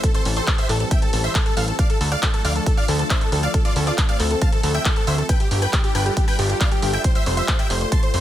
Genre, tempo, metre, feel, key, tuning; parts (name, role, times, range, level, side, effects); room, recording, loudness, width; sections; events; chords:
uplifting trance; 137 BPM; 4/4; straight; A4 = 439 Hz
big supersaw lead; melody; 0.0-8.2 s; F4 to C6; -25 LUFS; equal; sidechain pumping, ping-pong delay
analog pluck; second line; 0.0-8.2 s; G4 to C6; -31 LUFS; left 1 dB; chorus, sidechain pumping, ping-pong delay
lush unison pad; sustained chords; 0.0-8.2 s; E3 to B4; -30 LUFS; left 1 dB; chorus, phaser, sidechain pumping
electronic kick drum; drums; 0.0-8.0 s; -19 LUFS; equal
punchy analog drum machine; drums; 0.0-8.2 s; handclaps, hi-hat; -26 LUFS; equal
fat analog bass; bass; 0.3-8.2 s; F1 to D2; -21 LUFS; equal; sidechain pumping
little or no reverb; -17 LUFS; side -12 dB against mid
0.0-8.2 A section
0.0 Am; 1.8 Dm; 5.3 G7; 7.0 Fadd9